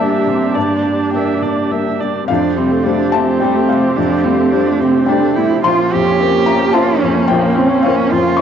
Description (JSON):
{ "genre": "neoclassical piano and strings", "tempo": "103-111 BPM", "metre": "3/4", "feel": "rubato", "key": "F major", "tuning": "A4 = 440 Hz", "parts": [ { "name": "muted cello", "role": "second line", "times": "0.0-8.4 s", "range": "Bb3 to G4", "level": "-16 LUFS", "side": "right 6 dB", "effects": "cassette tape, analog delay" }, { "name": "felt-muted upright piano", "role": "accompaniment", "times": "0.0-8.4 s", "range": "Bb1 to D6", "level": "-17 LUFS", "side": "left 8 dB", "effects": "cassette tape" }, { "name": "muted viola", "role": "accompaniment", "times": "0.0-8.4 s", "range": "C3 to E5", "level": "-22 LUFS", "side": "right 7 dB", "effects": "cassette tape" }, { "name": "muted chamber string section", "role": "sustained chords", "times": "0.0-8.4 s", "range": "F3 to G4", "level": "-19 LUFS", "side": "left 1 dB", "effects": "cassette tape" } ], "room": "moderate lush hall reverb, RT60 2.8 s", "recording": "home recording on cassette, nothing above 7.8 kHz", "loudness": "-12 LUFS", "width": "side -8 dB against mid", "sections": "0.0-2.3 A section; 2.3-8.4 B section", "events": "none", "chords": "0.0 Gm; 2.3 Fadd9; 5.6 Bbmadd9" }